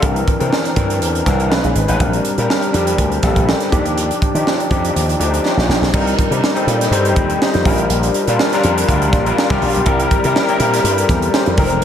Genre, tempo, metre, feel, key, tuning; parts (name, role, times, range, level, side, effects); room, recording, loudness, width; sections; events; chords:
polished 1980s jazz-funk pop; 122 BPM; 4/4; swing 54% on 16ths; A4 = 440 Hz
overdriven tine electric piano; accompaniment; 0.0-11.8 s; E3 to G5; -16 LUFS; left 2 dB; ensemble chorus, slapback echo
slap bass with an envelope filter; bass; 0.0-11.8 s; E1 to Eb3; -18 LUFS; right 1 dB
crisp fusion drum kit; drums; 0.0-11.8 s; crash cymbal, hi-hat, kick drum, snare drum; -18 LUFS; right 1 dB
moderate scoring stage reverb, RT60 2.1 s; big arena sound; -13 LUFS; side -9 dB against mid
0.0-5.9 A section; 5.9-11.8 B section
drum fill 5.4-5.9
0.0 C9; 1.5 B69; 2.0 Bb69; 3.7 Ebmaj9; 5.9 Cm7; 7.7 Gm7; 9.9 C7